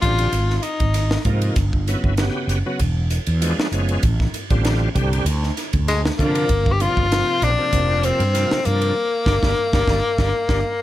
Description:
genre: electric jazz fusion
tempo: 97 BPM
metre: 4/4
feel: swing 54% on 16ths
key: G minor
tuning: A4 = 441 Hz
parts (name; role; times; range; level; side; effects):
- bright tenor saxophone; melody; 0.0-1.3, 5.9-10.8 s; Ab3 to G4; -21 LUFS; left 3 dB; none
- bright tonewheel organ; accompaniment; 0.0-10.6 s; C3 to G4; -26 LUFS; right 1 dB; slow rotary speaker, overdrive, chorus vibrato
- fretless electric bass; bass; 0.0-10.6 s; E1 to D3; -20 LUFS; right 1 dB; none
- crisp fusion drum kit; drums; 0.0-10.6 s; hi-hat, kick drum, ride cymbal, snare drum; -23 LUFS; equal; none
room: small room ambience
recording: none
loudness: -17 LUFS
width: side -14 dB against mid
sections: 0.0-10.8 A section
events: band accent 9.0-10.8; tonewheel organ fill 10.5-10.8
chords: 0.3 Abadd9; 1.6 Gmaj7; 2.8 E7b9; 4.0 F69/A; 5.3 Dm7; 6.5 Gm7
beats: 0.33 0.95 | 1.57 2.18 2.80 3.41 | 4.03 4.65 5.26 5.88 | 6.49 7.11 7.72 8.34 | 8.96 9.57 10.19 10.80

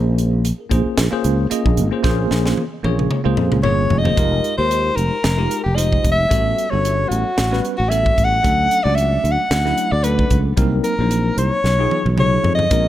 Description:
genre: electric jazz fusion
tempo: 112 BPM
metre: 4/4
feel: swing 55% on 16ths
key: unclear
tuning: A4 = 439 Hz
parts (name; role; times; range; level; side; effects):
- bell-like tine electric piano; accompaniment; 0.0-12.9 s; F#3 to Eb5; -23 LUFS; equal; medium stereo tremolo
- sustaining fretless electric bass; bass; 0.0-12.9 s; F1 to F2; -19 LUFS; equal; none
- crisp fusion drum kit; drums; 0.2-12.8 s; hi-hat, kick drum, snare drum, toms; -21 LUFS; equal; none
- warm soprano saxophone; melody; 3.6-12.9 s; F#4 to F#5; -19 LUFS; left 1 dB; none
room: light reverb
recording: none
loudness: -15 LUFS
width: side -13 dB against mid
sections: 0.0-4.2 A section; 4.2-12.9 B section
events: drum fill 2.0-4.2, 11.6-12.7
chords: 0.0 Bbm9; 4.2 Fm11; 6.3 A13; 8.4 Dmaj7; 10.6 Cm7b5; 11.6 B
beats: 0.44 0.97 1.50 | 2.04 2.57 3.10 3.64 | 4.17 4.70 5.24 5.77 | 6.30 6.84 7.37 7.91 | 8.44 8.97 9.51 10.04 | 10.57 11.11 11.64 12.18 | 12.71

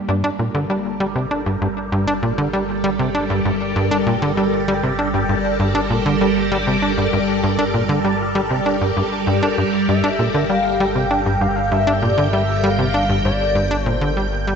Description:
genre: ambient, sequencer-driven space music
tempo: 98 BPM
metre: 4/4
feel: straight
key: G minor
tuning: A4 = 441 Hz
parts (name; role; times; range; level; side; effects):
- phased string machine; sustained chords; 0.0-14.6 s; G3 to G5; -20 LUFS; equal; ensemble chorus, phaser
- fat analog bass; bass; 0.0-14.6 s; G1; -28 LUFS; equal; none
- tight sequencer bass; riff; 0.1-14.5 s; G2 to D4; -20 LUFS; equal; tape echo
- pulse-width lead; melody; 9.9-14.1 s; D5 to G5; -21 LUFS; left 1 dB; chorus, tape echo
room: wet concert hall reverb, RT60 2.1 s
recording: cassette tape, nothing above 8.0 kHz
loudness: -16 LUFS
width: side -6 dB against mid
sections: 0.0-14.6 A section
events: fade-in on analog synth bass 0.0-14.6; fade-out 12.8-14.6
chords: 0.0 Gmadd9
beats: 0.39 1.00 1.62 | 2.23 2.84 3.45 4.07 | 4.68 5.29 5.90 6.51 | 7.13 7.74 8.35 8.96 | 9.58 10.19 10.80 11.41 | 12.03 12.64 13.25 13.86 | 14.47

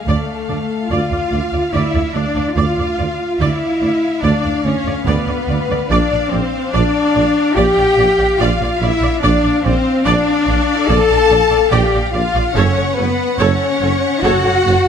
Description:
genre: cinematic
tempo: 72 BPM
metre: 4/4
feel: straight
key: unclear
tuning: A4 = 440 Hz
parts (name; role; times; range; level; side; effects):
- rich studio violin section; melody; 0.0-14.9 s; F5 to F#5; -28 LUFS; left 2 dB; none
- warm symphonic violin section; second line; 0.0-14.9 s; A4 to A5; -22 LUFS; left 2 dB; none
- mellow French horn section; sustained chords; 0.0-14.9 s; A3 to A4; -18 LUFS; left 5 dB; none
- rich studio cello section; bass; 0.0-14.9 s; A3 to A4; -22 LUFS; right 2 dB; none
- warm symphonic viola section; accompaniment; 0.1-14.7 s; A4 to D5; -23 LUFS; right 2 dB; none
- mellow tuba; bass; 0.1-14.7 s; F#1 to D2; -22 LUFS; right 4 dB; none
- rich symphonic double bass section; bass; 0.1-14.9 s; F#1 to D2; -20 LUFS; right 2 dB; none
room: moderate concert hall reverb, RT60 2.0 s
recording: none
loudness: -13 LUFS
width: side -7 dB against mid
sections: 0.0-14.9 A section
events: none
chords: 0.0 Dm; 5.9 A#; 12.6 F#m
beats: 0.07 0.90 1.73 | 2.57 3.40 4.23 5.07 | 5.90 6.73 7.57 8.40 | 9.23 10.07 10.90 11.73 | 12.57 13.40 14.23

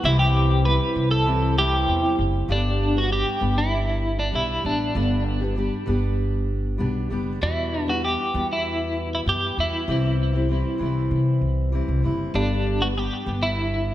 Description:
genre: acoustic pop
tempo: 97 BPM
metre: 4/4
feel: straight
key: G major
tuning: A4 = 441 Hz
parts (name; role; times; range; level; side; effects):
- twelve-string electric guitar; melody; 0.0-13.9 s; D4 to B4; -24 LUFS; equal; tremolo, ping-pong delay
- fingerpicked steel-string acoustic guitar; accompaniment; 0.0-13.9 s; E2 to G4; -27 LUFS; equal; none
- upright bass; bass; 0.0-13.9 s; F#1 to C3; -24 LUFS; equal; none
room: moderate scoring stage reverb, RT60 1.6 s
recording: none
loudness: -20 LUFS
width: side -13 dB against mid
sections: 0.0-2.5 A section; 2.5-13.9 B section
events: none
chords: 0.0 C; 2.5 G; 7.4 Emadd9; 9.9 C; 12.3 G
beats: | 0.04 0.65 1.27 1.88 | 2.49 3.11 3.72 4.34 | 4.95 5.57 6.18 6.80 | 7.42 8.03 8.65 9.26 | 9.88 10.49 11.11 11.73 | 12.34 12.96 13.57

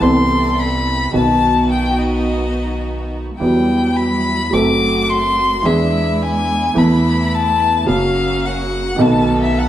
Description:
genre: tango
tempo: 107 BPM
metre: 4/4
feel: rubato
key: E minor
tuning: A4 = 440 Hz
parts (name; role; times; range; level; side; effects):
- warm violin; second line; 0.0-9.7 s; D#5 to D6; -18 LUFS; left 4 dB; none
- warm upright piano; accompaniment; 0.0-9.7 s; B1 to A4; -16 LUFS; right 1 dB; none
- warm chamber string section; stabs; 0.0-9.7 s; F#3 to A4; -23 LUFS; right 1 dB; none
- upright bass; bass; 0.0-9.7 s; F#1 to E2; -24 LUFS; right 1 dB; none
room: wet stone room reverb, RT60 1.2 s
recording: band playing live in one room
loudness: -14 LUFS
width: side -12 dB against mid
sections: 0.0-9.7 A section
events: violin solo 0.0-9.7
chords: 0.0 Amadd9/C; 1.1 B; 3.4 Emadd9; 4.5 F#dim; 5.6 E7; 6.8 Asus2/E; 7.9 F#; 9.0 B7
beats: 0.01 0.57 | 1.13 1.70 2.26 2.83 | 3.39 3.96 4.52 5.08 | 5.64 6.20 6.76 7.32 | 7.87 8.42 8.98 9.53

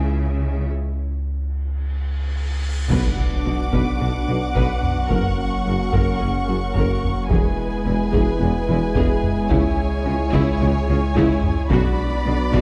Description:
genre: cinematic, hybrid orchestral and electronic film score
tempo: 109 BPM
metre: 4/4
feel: straight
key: C# phrygian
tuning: A4 = 440 Hz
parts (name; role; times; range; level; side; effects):
- warm symphonic violin section; second line; 0.0-12.6 s; G#4 to F#5; -32 LUFS; equal; none
- warm symphonic viola section; accompaniment; 0.0-12.6 s; G#3 to B4; -30 LUFS; equal; none
- hollow soft pad; sustained chords; 0.0-12.6 s; F#3 to C#5; -33 LUFS; equal; ensemble chorus
- pure sine sub bass; bass; 0.0-12.6 s; E1 to C#2; -27 LUFS; equal; none
- rich symphonic cello section; bass; 0.0-12.6 s; E2 to C#3; -29 LUFS; equal; none
- rich symphonic double bass section; bass; 0.0-12.6 s; E1 to C#2; -30 LUFS; equal; none
- cymbal swell and impact; sound effects; 2.2-5.1 s; none; -32 LUFS; equal; none
- warm studio violin section; melody; 2.9-12.6 s; G#5 to D6; -33 LUFS; equal; none
- mellow French horn section; sustained chords; 2.9-12.6 s; G#3 to E4; -30 LUFS; equal; none
- mellow tuba; bass; 2.9-12.6 s; E1 to C#2; -30 LUFS; equal; none
- taiko ensemble; drums; 2.9-12.6 s; none; -26 LUFS; equal; none
room: moderate concert hall reverb, RT60 2.1 s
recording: dark, warm production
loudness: -21 LUFS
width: mono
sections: 0.0-2.9 A section; 2.9-12.6 B section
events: break 0.7-2.9; cymbal swell 2.2-2.9; drum fill 2.1-2.9; impact 2.9-5.1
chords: 0.0 C#m; 2.9 Bm; 5.1 F#; 7.3 E; 9.5 C#m; 11.7 Bm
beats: 0.15 | 0.70 1.25 1.80 2.35 | 2.90 3.46 4.01 4.56 | 5.11 5.66 6.21 6.76 | 7.31 7.86 8.41 8.96 | 9.51 10.06 10.61 11.16 | 11.71 12.26

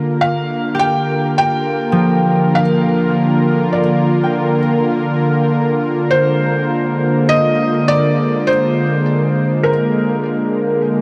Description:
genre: ambient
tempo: 51 BPM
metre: 4/4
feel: straight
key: unclear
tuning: A4 = 441 Hz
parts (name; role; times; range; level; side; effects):
- warm analog pad; sustained chords; 0.0-11.0 s; D3 to Bb4; -18 LUFS; equal; chorus
- concert harp; arpeggios; 0.0-10.1 s; F3 to G5; -22 LUFS; equal; tape echo
- bowed-like drone; drone; 0.0-11.0 s; Bb3 to Bb4; -28 LUFS; equal; none
- felt-muted upright piano; melody; 0.2-11.0 s; Bb4 to G5; -21 LUFS; equal; tape echo
room: wet huge ambient reverb, RT60 8.3 s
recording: none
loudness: -15 LUFS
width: mono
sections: 0.0-11.0 A section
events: none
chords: 0.0 Gm7; 5.0 Bb7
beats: | 0.25 1.42 2.60 3.77 | 4.95 6.13 7.30 8.48 | 9.66 10.83

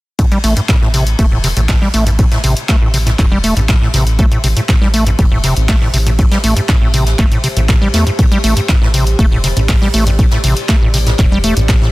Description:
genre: acid house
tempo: 120 BPM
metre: 4/4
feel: straight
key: A minor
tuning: A4 = 442 Hz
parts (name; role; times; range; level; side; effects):
- acid bass, square; riff; 0.2-11.9 s; G2 to A3; -16 LUFS; equal; overdrive, digital delay
- electronic kick drum; drums; 0.2-11.8 s; none; -12 LUFS; equal; none
- jazz brush drum kit; drums; 0.2-11.9 s; hi-hat, ride cymbal, snare drum; -26 LUFS; left 2 dB; high-pass filter on cymbals, high-pass filter on hats, soft clipping on snare, high-pass filter on snare, high-pass filter on room
- punchy analog drum machine; drums; 0.2-11.8 s; handclaps, hi-hat; -20 LUFS; equal; none
- deep dark ambient pad; texture; 2.2-11.9 s; G4 to E5; -27 LUFS; equal; chorus, built-in reverb, sidechain pumping
- round analog bass; bass; 0.4-11.9 s; E1 to E2; -15 LUFS; equal; tube saturation, sidechain pumping
room: small room reverb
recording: dense, heavily limited modern master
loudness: -10 LUFS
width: side -19 dB against mid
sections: 0.2-11.9 A section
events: fade-in on ambient pad 0.2-11.9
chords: 0.2 Am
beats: | 0.19 0.69 1.19 1.69 | 2.19 2.69 3.19 3.69 | 4.19 4.69 5.19 5.69 | 6.19 6.69 7.19 7.69 | 8.19 8.69 9.19 9.69 | 10.19 10.69 11.19 11.69

